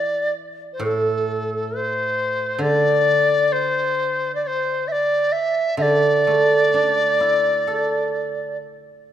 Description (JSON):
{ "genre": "chinese traditional, Chinese chamber ensemble", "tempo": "66 BPM", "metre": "4/4", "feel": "rubato", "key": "unclear", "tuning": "A4 = 440 Hz", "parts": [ { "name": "bright reedy large dizi", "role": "melody", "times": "0.0-8.6 s", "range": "A4 to E5", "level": "-19 LUFS", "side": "left 1 dB", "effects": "none" }, { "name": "guzheng", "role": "accompaniment", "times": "0.0-9.1 s", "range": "A2 to A4", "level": "-23 LUFS", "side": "right 2 dB", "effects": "none" } ], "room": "moderate concert hall reverb, RT60 2.4 s", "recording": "minimal, uncompressed stereo recording", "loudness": "-17 LUFS", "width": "side -10 dB against mid", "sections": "0.0-9.1 A section", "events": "none", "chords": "none" }